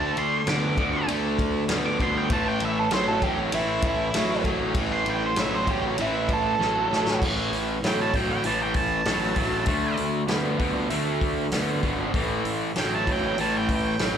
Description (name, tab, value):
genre	blues rock power trio and southern rock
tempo	98 BPM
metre	4/4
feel	straight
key	unclear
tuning	A4 = 439 Hz
part	octave-fuzz lead guitar	melody	0.0-14.2 s	E4 to D6	-27 LUFS	right 3 dB	distortion, slapback echo
part	overdriven tonewheel organ	sustained chords	0.0-14.2 s	G3 to G4	-40 LUFS	right 3 dB	none
part	distorted electric guitar	riff	0.0-14.2 s	A2 to B3	-26 LUFS	equal	distortion, slapback echo
part	fuzz picked electric bass	bass	0.0-14.2 s	G#1 to D2	-31 LUFS	equal	overdrive
part	vintage drum kit	drums	0.2-14.1 s	crash cymbal, hi-hat, kick drum, ride cymbal, snare drum	-29 LUFS	equal	none
room	light reverb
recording	live gig heard through the venue's PA, club reverb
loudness	-22 LUFS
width	side -8 dB against mid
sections	0.0-7.2 A section; 7.2-14.2 B section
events	lead electric guitar solo 0.0-7.2; drum fill 6.6-7.2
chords	0.0 D7; 2.3 A7; 9.7 D7; 12.1 A7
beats	0.46 1.08 1.69 | 2.31 2.92 3.53 4.14 | 4.76 5.37 5.99 6.60 | 7.21 7.83 8.45 9.06 | 9.68 10.30 10.91 11.53 | 12.15 12.77 13.38 14.00